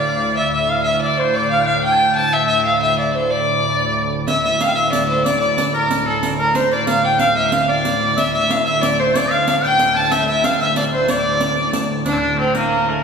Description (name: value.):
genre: medieval dance.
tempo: 123 BPM (dotted quarters).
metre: 6/8.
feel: straight.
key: D minor.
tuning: A4 = 435 Hz.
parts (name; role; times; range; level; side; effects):
warm fiddle; melody; 0.0-13.0 s; A3 to A5; -17 LUFS; right 1 dB; none.
bright shawm; second line; 0.0-13.0 s; C4 to A5; -20 LUFS; left 3 dB; none.
pipe organ, strings celeste; drone; 0.0-13.0 s; D2 to A2; -23 LUFS; equal; none.
riq; percussion; 4.3-12.7 s; none; -25 LUFS; right 2 dB; none.
room: wet church reverb, RT60 2.7 s.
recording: band playing live in one room.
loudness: -15 LUFS.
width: side -6 dB against mid.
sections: 0.0-4.3 A section; 4.3-12.1 A section.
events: none.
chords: none.